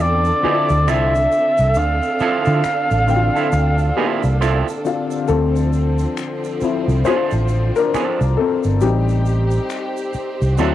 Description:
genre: R&B, neo-soul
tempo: 68 BPM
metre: 4/4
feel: swing 61% on 16ths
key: D minor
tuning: A4 = 442 Hz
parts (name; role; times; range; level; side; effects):
- warm flugelhorn; melody; 0.0-4.9 s; D5 to F5; -19 LUFS; equal; none
- electric guitar through a small old amp; second line; 0.0-10.7 s; F3 to A4; -21 LUFS; right 7 dB; tremolo, cassette tape
- warm upright piano; accompaniment; 0.0-10.7 s; D3 to G5; -22 LUFS; left 7 dB; cassette tape
- warm studio string section; sustained chords; 0.0-10.7 s; D3 to A4; -26 LUFS; right 1 dB; cassette tape
- fretless electric bass; bass; 0.0-10.7 s; G1 to D3; -18 LUFS; right 1 dB; none
- egg shaker and finger snaps; percussion; 0.2-10.7 s; none; -37 LUFS; left 4 dB; none
room: light reverb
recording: home recording on cassette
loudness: -15 LUFS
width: side -12 dB against mid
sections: 0.0-5.3 A section; 5.3-10.7 B section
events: upright piano solo 5.3-10.7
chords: 0.0 Dm9; 5.3 Dm7; 8.8 Am7b5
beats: 0.87 | 1.75 2.63 3.52 4.40 | 5.28 6.16 7.04 7.93 | 8.81 9.69 10.57

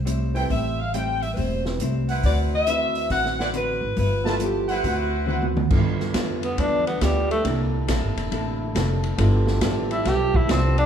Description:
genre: jazz, big band swing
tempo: 138 BPM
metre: 4/4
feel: swing 66% on 8ths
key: G mixolydian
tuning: A4 = 440 Hz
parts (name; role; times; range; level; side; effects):
- upright bass; bass; 0.0-10.9 s; E1 to G2; -24 LUFS; equal; none
- vintage hollow-body jazz guitar; accompaniment; 0.1-10.8 s; G2 to B4; -30 LUFS; left 2 dB; none
- open jazz drum kit; drums; 0.1-10.8 s; crash cymbal, hi-hat, kick drum, ride cymbal, snare drum, toms; -27 LUFS; right 1 dB; none
- warm upright piano; accompaniment; 0.3-9.9 s; Bb3 to B4; -31 LUFS; right 3 dB; none
- warm trumpet section; stabs; 0.3-5.5 s; E4 to A5; -29 LUFS; right 2 dB; none
- warm saxophone section; melody; 0.5-5.6 s; F#4 to G5; -25 LUFS; left 2 dB; none
- warm trombone section; sustained chords; 5.7-10.9 s; D3 to A4; -32 LUFS; right 2 dB; none
- breathy tenor saxophone; melody; 6.4-10.9 s; G3 to G4; -23 LUFS; right 1 dB; none
room: wet large studio reverb, RT60 1.1 s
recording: heard from further back in the room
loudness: -20 LUFS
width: side -8 dB against mid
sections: 0.0-5.7 A section; 5.7-10.9 B section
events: drum fill 5.3-5.7; tenor saxophone solo 5.7-10.9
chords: 0.0 Am7; 2.2 D13; 4.0 G13; 4.8 D13; 5.7 G13; 7.4 C13; 9.2 G13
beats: 0.07 | 0.50 0.93 1.37 1.80 | 2.23 2.67 3.10 3.54 | 3.97 4.41 4.84 5.28 | 5.71 6.14 6.58 7.01 | 7.45 7.88 8.31 8.75 | 9.18 9.62 10.05 10.48

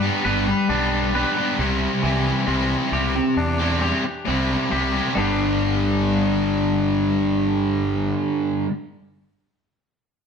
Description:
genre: rock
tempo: 67 BPM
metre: 4/4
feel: straight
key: G major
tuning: A4 = 442 Hz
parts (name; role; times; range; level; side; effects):
- twangy electric guitar; arpeggios; 0.0-8.7 s; C3 to B4; -27 LUFS; left 2 dB; spring reverb
- cranked stack guitar; riff; 0.0-8.7 s; G2 to G4; -24 LUFS; left 6 dB; overdrive
- distorted electric guitar; riff; 0.0-8.7 s; G2 to G4; -23 LUFS; right 2 dB; distortion
- fuzz fingered electric bass; bass; 0.0-8.1 s; G1 to E2; -26 LUFS; right 1 dB; overdrive
room: moderate stone room reverb, RT60 1.0 s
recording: band playing live in one room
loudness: -19 LUFS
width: side -6 dB against mid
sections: 0.0-5.2 A section; 5.2-8.7 B section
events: none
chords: 0.0 G; 1.6 Cadd9; 5.2 G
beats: 0.69 | 1.59 2.48 3.38 4.27 | 5.17 6.06 6.96 7.85

